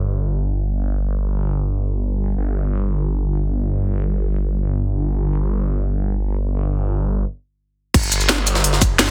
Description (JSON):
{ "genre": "dark technical drum and bass", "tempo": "free time", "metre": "none", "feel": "none", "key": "unclear", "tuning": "A4 = 440 Hz", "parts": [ { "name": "phased detuned saw bass", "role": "bass", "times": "0.0-9.1 s", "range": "G1", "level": "-22 LUFS", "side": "equal", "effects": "phaser, tube saturation" }, { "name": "drum and bass drum kit", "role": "drums", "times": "7.9-9.1 s", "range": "crash cymbal, hi-hat, shaker, snare drum", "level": "-20 LUFS", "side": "equal", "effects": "low-pass filter on hats, low-pass filter on cymbals, low-pass filter on snare, low-pass filter on perc" }, { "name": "electronic kick drum", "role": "drums", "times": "7.9-8.9 s", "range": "none", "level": "-18 LUFS", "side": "equal", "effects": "none" }, { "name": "jungle sampler-style drum kit", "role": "drums", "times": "7.9-9.1 s", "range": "ride cymbal, snare drum", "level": "-25 LUFS", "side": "equal", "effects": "high-pass filter on snare, high-pass filter on cymbals, high-pass filter on room" } ], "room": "little or no reverb", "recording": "dense, heavily limited modern master", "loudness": "-21 LUFS", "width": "mono", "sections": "0.0-7.9 A section; 7.9-9.1 B section", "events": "stop 7.2-7.9; drop 7.9-9.1", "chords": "none" }